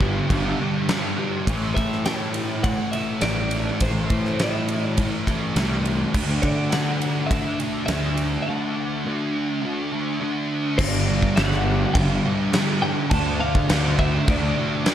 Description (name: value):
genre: rock, shoegaze and dream pop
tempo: 103 BPM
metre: 4/4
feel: straight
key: unclear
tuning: A4 = 440 Hz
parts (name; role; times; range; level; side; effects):
- twelve-string electric guitar; melody; 0.0-14.9 s; C5 to A5; -29 LUFS; left 1 dB; spring reverb, digital delay
- thick fuzz guitar; riff; 0.0-14.9 s; G2 to D4; -24 LUFS; equal; distortion, ensemble chorus
- fuzz fingered electric bass; bass; 0.0-14.5 s; G1 to D3; -25 LUFS; equal; overdrive
- huge arena drum kit; drums; 0.0-14.9 s; crash cymbal, kick drum, ride cymbal, snare drum; -25 LUFS; equal; none
room: studio reverb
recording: dark, warm production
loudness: -20 LUFS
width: side -10 dB against mid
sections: 0.0-1.5 A section; 1.5-10.8 B section; 10.8-14.9 A section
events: break 8.5-10.8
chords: 0.0 G5; 1.5 A5; 6.2 Dadd9; 10.8 G5; 13.1 Dm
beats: 0.30 0.89 | 1.47 2.06 2.64 3.23 | 3.81 4.40 4.98 5.57 | 6.15 6.73 7.31 7.89 | 8.47 9.05 9.63 10.21 | 10.79 11.37 11.95 12.54 | 13.12 13.70 14.28 14.86